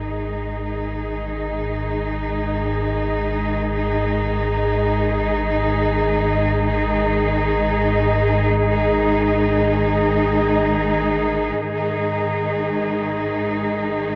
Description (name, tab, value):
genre	dark ambient drone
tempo	free time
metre	none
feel	none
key	unclear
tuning	A4 = 439 Hz
part	dark symphonic cello section	sustained chords	0.0-14.2 s	G#2 to G#4	-21 LUFS	equal	none
part	deep rumbling drone	drone	0.0-14.2 s	G#1 to G#2	-28 LUFS	equal	built-in reverb
part	bronze singing bowl	texture	0.0-11.6 s	none	barely audible	none	none
room	wet huge ambient reverb, RT60 7.9 s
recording	worn, warbling old tape, cassette tape, warbly pitch drift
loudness	-20 LUFS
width	mono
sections	0.0-11.6 A section; 11.6-14.2 B section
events	fade-in on synth drone 0.0-11.6; fade-in on cello section 0.0-11.6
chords	0.0 G#5